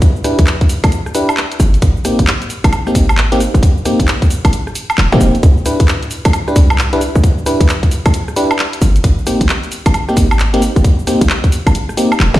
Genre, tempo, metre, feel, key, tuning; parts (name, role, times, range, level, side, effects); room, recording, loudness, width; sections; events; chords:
UK garage, two-step garage; 133 BPM; 4/4; swing 63% on 16ths; A4 = 438 Hz
electronic kick drum; drums; 0.0-11.5 s; -11 LUFS; equal
garage drum kit; drums; 0.0-12.4 s; cabasa, handclaps, hi-hat, rim click, snare drum, woodblock; -19 LUFS; right 1 dB
FM electric piano; stabs; 0.2-12.1 s; Bb3 to B4; -17 LUFS; equal; chorus, ping-pong delay
short 808-style bass; bass; 0.4-12.4 s; Eb1 to Ab2; -12 LUFS; equal
light reverb; played on a big sound system in a bare room, stone room reverb; -10 LUFS; side -15 dB against mid
0.0-12.4 A section
0.0 Cmaj9 (rootless); 1.8 Abmaj9; 5.4 Cmaj9; 9.0 Abmaj9